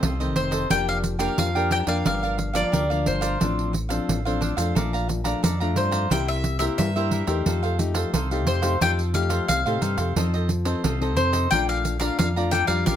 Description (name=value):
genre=samba and choro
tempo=89 BPM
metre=4/4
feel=straight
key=Bb major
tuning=A4 = 440 Hz
part: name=cavaquinho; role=accompaniment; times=0.0-13.0 s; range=D4 to Bb5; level=-30 LUFS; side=right 5 dB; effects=none
part: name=nylon-string guitar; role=accompaniment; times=0.0-13.0 s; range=F2 to A4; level=-28 LUFS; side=left 5 dB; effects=none
part: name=fingered electric bass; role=bass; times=0.0-13.0 s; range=F1 to A2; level=-26 LUFS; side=equal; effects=none
part: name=pandeiro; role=percussion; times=0.0-13.0 s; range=none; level=-26 LUFS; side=right 3 dB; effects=none
part: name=bowl-back mandolin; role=melody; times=0.4-13.0 s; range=C5 to G5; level=-25 LUFS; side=left 2 dB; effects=slapback echo
room=light reverb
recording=close, detailed microphones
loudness=-21 LUFS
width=side -10 dB against mid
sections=0.0-13.0 A section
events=none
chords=0.0 F7; 0.7 Bb6/F; 2.1 Gm7; 3.4 Dm7/A; 4.8 Bbmaj7; 6.1 C7; 7.5 F9; 10.2 F7; 11.5 Bbmaj7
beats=0.03 0.70 1.38 | 2.05 2.73 3.40 4.08 | 4.76 5.43 6.11 6.78 | 7.46 8.13 8.81 9.49 | 10.16 10.84 11.52 12.19 | 12.87